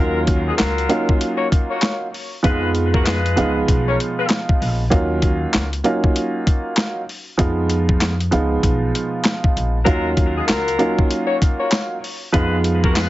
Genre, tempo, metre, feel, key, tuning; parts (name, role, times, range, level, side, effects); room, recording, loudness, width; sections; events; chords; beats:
hip hop, boom-bap hip-hop; 97 BPM; 4/4; swing 61% on 16ths; Eb minor; A4 = 441 Hz
dark upright piano; accompaniment; 0.0-13.1 s; F3 to F4; -21 LUFS; right 2 dB; cassette tape, high-pass filter, low-pass filter, plate reverb
bright saxophone section; stabs; 0.0-4.3, 9.8-13.1 s; Gb3 to Db5; -23 LUFS; left 3 dB; high-pass filter, low-pass filter, digital delay, plate reverb
upright bass; bass; 0.0-13.1 s; Bb1 to F2; -22 LUFS; equal
boom bap sampler-style drum kit; drums; 0.3-13.1 s; handclaps, hi-hat, kick drum, snare drum; -18 LUFS; equal
tambourine; percussion; 10.5-13.1 s; -35 LUFS; left 6 dB
light reverb; heavily compressed radio sound, multiband compression, nothing above 7.8 kHz; -16 LUFS; side -16 dB against mid
0.0-9.9 A section; 9.9-13.1 A section
0.0 Ebm9; 2.4 Fm7b5; 4.9 Ebm9; 7.4 Fm7b5; 9.9 Ebm9; 12.3 Fm7b5
0.59 1.21 1.83 | 2.44 3.06 3.68 4.30 | 4.92 5.54 6.16 6.77 | 7.39 8.01 8.63 9.25 | 9.87 10.49 11.10 11.72 | 12.34 12.96